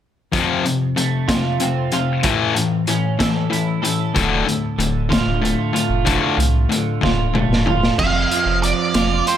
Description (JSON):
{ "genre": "quiet-loud alternative rock", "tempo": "63 BPM (dotted quarters)", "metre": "6/8", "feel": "straight", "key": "unclear", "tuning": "A4 = 440 Hz", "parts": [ { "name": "electric guitar at the edge of break-up", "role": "arpeggios", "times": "0.3-9.4 s", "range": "D2 to A4", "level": "-23 LUFS", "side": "right 8 dB", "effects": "lush chorus, tape echo" }, { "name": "distorted electric guitar", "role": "riff", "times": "0.3-7.9 s", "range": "D2 to A3", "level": "-19 LUFS", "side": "left 6 dB", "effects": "overdrive" }, { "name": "raw garage drum kit", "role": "drums", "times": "0.3-9.4 s", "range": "crash cymbal, hi-hat, kick drum, snare drum, toms", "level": "-21 LUFS", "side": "equal", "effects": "none" }, { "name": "warm sub bass", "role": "bass", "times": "4.2-9.2 s", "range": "D1 to C2", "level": "-22 LUFS", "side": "right 1 dB", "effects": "none" }, { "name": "octave-fuzz lead guitar", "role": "melody", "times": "8.0-9.4 s", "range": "C5 to F5", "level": "-19 LUFS", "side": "right 2 dB", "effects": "distortion, tape echo" } ], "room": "light reverb", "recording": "none", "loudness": "-16 LUFS", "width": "side -10 dB against mid", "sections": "0.3-8.0 A section; 8.0-9.4 B section", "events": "drum fill 7.0-8.0", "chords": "0.3 F; 2.2 A; 4.2 Dm; 8.0 F5" }